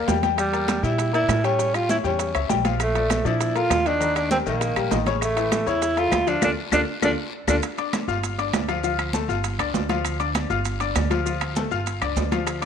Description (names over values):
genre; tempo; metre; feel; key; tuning
latin, salsa; 199 BPM; 4/4; straight; unclear; A4 = 440 Hz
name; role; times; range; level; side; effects
breathy tenor saxophone; melody; 0.0-7.6 s; G3 to F4; -23 LUFS; right 2 dB; none
bright baby grand piano; accompaniment; 0.0-12.7 s; C#3 to F6; -26 LUFS; left 10 dB; none
upright bass; bass; 0.0-12.7 s; G1 to Bb2; -28 LUFS; right 2 dB; none
bongos; percussion; 0.1-7.5, 12.5-12.6 s; none; -35 LUFS; left 9 dB; none
congas; percussion; 0.1-12.7 s; none; -30 LUFS; right 2 dB; none
guiro; percussion; 0.1-12.7 s; none; -40 LUFS; left 10 dB; none
maracas; percussion; 0.1-12.7 s; none; -37 LUFS; right 13 dB; none
timbales; percussion; 0.1-12.7 s; none; -31 LUFS; right 13 dB; none
claves; percussion; 0.4-12.6 s; none; -34 LUFS; left 11 dB; none
room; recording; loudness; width
moderate echo chamber reverb, RT60 1.5 s, studio reverb; 1960s-style stereo with parts hard left and right; -20 LUFS; side -7 dB against mid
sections
0.0-7.6 A section; 7.6-12.7 B section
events
band accent 6.4-7.6; drum fill 6.9-7.6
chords
0.4 Em7b5; 1.6 A7; 2.8 Bbmaj7; 4.0 Eb; 5.2 A; 6.4 Dm; 7.6 G5; 8.8 Dm; 9.4 G5; 11.3 Dm; 11.9 G5